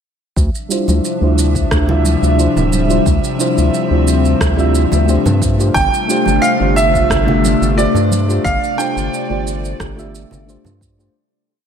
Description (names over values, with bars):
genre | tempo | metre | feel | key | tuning
sunset chillout | 89 BPM | 4/4 | straight | D minor | A4 = 443 Hz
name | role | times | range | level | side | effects
airy breathy pad | sustained chords | 0.8-11.1 s | C3 to E5 | -19 LUFS | left 2 dB | chorus
round analog bass | bass | 0.4-11.1 s | D1 to G2 | -16 LUFS | equal | none
electronic kick drum | drums | 0.4-11.0 s | none | -20 LUFS | equal | none
electronic shaker and rim click | drums | 0.4-11.1 s | none | -24 LUFS | right 2 dB | none
mellow FM electric piano | accompaniment | 0.7-11.1 s | G3 to E5 | -19 LUFS | left 1 dB | chorus, auto-pan, low-pass filter, analog delay
congas | percussion | 0.9-10.8 s | none | -24 LUFS | right 3 dB | none
bright grand piano | melody | 5.7-9.4 s | D5 to G5 | -17 LUFS | right 4 dB | analog delay
room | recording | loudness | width
moderate lush hall reverb, RT60 1.7 s | dreamy mix soaked in reverb | -12 LUFS | side -8 dB against mid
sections
0.4-11.2 groove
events
filter sweep on FM electric piano 0.4-11.2; fade-out 7.6-11.2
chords
0.4 Dm11; 5.4 G9sus4